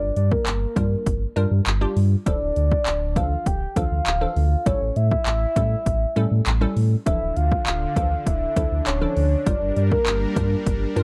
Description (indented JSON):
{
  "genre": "dance-pop",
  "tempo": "100 BPM",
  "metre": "4/4",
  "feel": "straight",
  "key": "D harmonic minor",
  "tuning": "A4 = 440 Hz",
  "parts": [
    { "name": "soft octave-layered synth lead", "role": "melody", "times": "0.0-11.0 s", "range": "Bb4 to G5", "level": "-28 LUFS", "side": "equal", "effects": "chorus, slapback echo" },
    { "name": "glassy wavetable pluck", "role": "accompaniment", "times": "0.0-11.0 s", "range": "E3 to Bb4", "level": "-32 LUFS", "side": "equal", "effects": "chorus, sidechain pumping" },
    { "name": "sub bass with octave", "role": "bass", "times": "0.0-11.0 s", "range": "D1 to A2", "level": "-24 LUFS", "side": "equal", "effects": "sidechain pumping" },
    { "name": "punchy analog drum machine", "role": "drums", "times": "0.2-11.0 s", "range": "handclaps, hi-hat, kick drum", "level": "-27 LUFS", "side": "equal", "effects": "overdrive" },
    { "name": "supersaw pad", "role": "sustained chords", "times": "7.1-11.0 s", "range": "D3 to Bb4", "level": "-33 LUFS", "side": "equal", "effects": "sidechain pumping" }
  ],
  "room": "little or no reverb",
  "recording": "dry, close 1970s-style studio recording",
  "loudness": "-22 LUFS",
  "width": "mono",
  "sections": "0.0-11.0 A section",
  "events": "none",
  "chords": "0.0 Gm7; 2.3 Dmadd9; 4.7 A7; 7.1 Dmadd9; 9.5 Gm7"
}